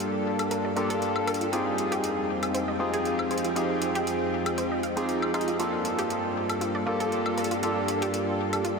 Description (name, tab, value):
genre	deep house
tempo	118 BPM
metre	4/4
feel	swing 54% on 16ths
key	G minor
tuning	A4 = 439 Hz
part	soft string machine	sustained chords	0.0-8.8 s	F2 to G5	-33 LUFS	equal	ensemble chorus
part	percussive organ stab	stabs	0.0-8.8 s	Bb3 to A4	-28 LUFS	left 1 dB	lush chorus, tape echo
part	dusty soul sampler-style drum kit	drums	0.0-8.8 s	none	barely audible	none	none
part	electronic hi-hat and woodblock	drums	0.0-8.8 s	none	-36 LUFS	left 2 dB	overdrive
part	deep dark ambient pad	texture	0.0-8.8 s	F4 to D5	-34 LUFS	right 2 dB	chorus, built-in reverb
part	analog pluck	arpeggios	0.4-8.7 s	F4 to F5	-34 LUFS	equal	chorus, ping-pong delay
room	wet huge ambient reverb, RT60 7.1 s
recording	dreamy mix soaked in reverb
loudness	-25 LUFS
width	side -4 dB against mid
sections	0.0-8.8 A section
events	filter sweep on string machine 0.0-8.8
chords	0.0 Gm9; 1.5 Fm9; 5.6 Gm9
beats	0.00 0.51 1.02 | 1.53 2.04 2.54 3.05 | 3.56 4.07 4.58 5.09 | 5.60 6.10 6.61 7.12 | 7.63 8.14 8.65